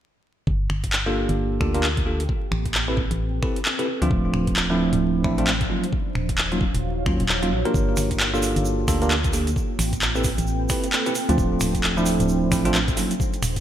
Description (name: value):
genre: UK garage, two-step garage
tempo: 132 BPM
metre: 4/4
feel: swing 61% on 16ths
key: unclear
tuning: A4 = 440 Hz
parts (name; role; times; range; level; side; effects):
- organ-like FM bass; bass; 0.5-13.6 s; D1 to Eb2; -25 LUFS; equal; none
- electronic kick drum; drums; 0.5-13.6 s; none; -26 LUFS; equal; none
- deep dark ambient pad; texture; 1.9-13.6 s; F3 to G5; -30 LUFS; right 1 dB; chorus, built-in reverb, sidechain pumping
- garage drum kit; drums; 0.7-13.6 s; finger snaps, handclaps, hi-hat; -26 LUFS; equal; overdrive, gated reverb
- bell-like tine electric piano; stabs; 1.1-13.1 s; F3 to B4; -24 LUFS; right 1 dB; wide subtle chorus, ping-pong delay
- egg shaker; percussion; 7.7-13.6 s; none; -35 LUFS; right 5 dB; none
room: light reverb, digital ambience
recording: bright 1980s-style digital production, vinyl crackle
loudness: -20 LUFS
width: side -11 dB against mid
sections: 0.5-13.6 A section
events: none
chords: 0.5 Gm9; 2.3 Am9; 3.9 Dm9; 5.7 Ebm9; 7.7 Gm9; 9.6 Am9; 11.2 Dm9; 13.0 Ebm9